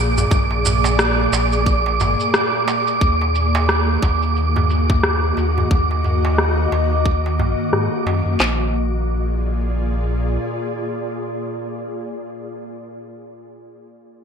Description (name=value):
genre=organic downtempo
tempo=89 BPM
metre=4/4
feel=swing 58% on 16ths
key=unclear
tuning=A4 = 438 Hz
part: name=ethereal airy pad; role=sustained chords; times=0.0-11.9 s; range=Bb2 to Eb5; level=-23 LUFS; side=left 1 dB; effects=ensemble chorus, built-in reverb, sidechain pumping
part: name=warm sub bass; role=bass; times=0.0-10.4 s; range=Ab1 to Ab2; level=-20 LUFS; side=equal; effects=none
part: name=wind-like tuned noise texture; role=texture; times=0.0-8.4 s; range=D6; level=-23 LUFS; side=right 5 dB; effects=built-in reverb
part: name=electronic shaker and rim click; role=drums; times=0.2-8.4 s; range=none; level=-22 LUFS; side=equal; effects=low-pass filter on hats, low-pass filter on perc, low-pass filter on snare, low-pass filter on room, gated reverb
part: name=darbuka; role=percussion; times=0.2-8.2 s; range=none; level=-27 LUFS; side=right 2 dB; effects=none
part: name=organic electronic drum kit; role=drums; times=0.3-8.6 s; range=handclaps, kick drum, snare drum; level=-18 LUFS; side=equal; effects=gated reverb
room=moderate lush hall reverb, RT60 2.6 s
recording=bright 1980s-style digital production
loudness=-16 LUFS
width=side -7 dB against mid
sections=0.0-8.4 A section; 8.4-11.1 B section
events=filter sweep on drum 0.0-8.4; filter sweep on sub bass 0.0-8.4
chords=0.0 Bb7; 3.0 Ebm; 8.4 Bb7